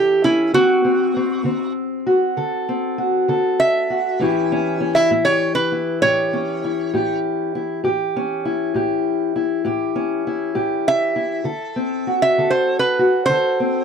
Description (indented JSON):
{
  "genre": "acoustic country blues, solo or duo",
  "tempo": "66 BPM (dotted quarters)",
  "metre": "12/8",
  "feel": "straight",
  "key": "A mixolydian",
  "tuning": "A4 = 441 Hz",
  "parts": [
    { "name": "lap resonator guitar", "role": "melody", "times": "0.0-13.8 s", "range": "E4 to E5", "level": "-17 LUFS", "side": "right 2 dB", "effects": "none" },
    { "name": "fingerpicked steel-string acoustic guitar", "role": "accompaniment", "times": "0.0-13.8 s", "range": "A2 to A4", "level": "-19 LUFS", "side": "left 2 dB", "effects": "none" }
  ],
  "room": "little or no reverb",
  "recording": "dry, close 1970s-style studio recording",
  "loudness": "-17 LUFS",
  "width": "side -6 dB against mid",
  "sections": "0.0-13.8 A section",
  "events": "resonator guitar played with a steel bar solo 0.0-13.8",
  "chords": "0.0 A7; 0.5 D7; 4.2 A7; 11.5 D7",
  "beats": "| 0.53 1.44 2.36 3.27 | 4.18 5.09 6.00 6.91 | 7.82 8.73 9.64 10.54 | 11.45 12.36 13.26"
}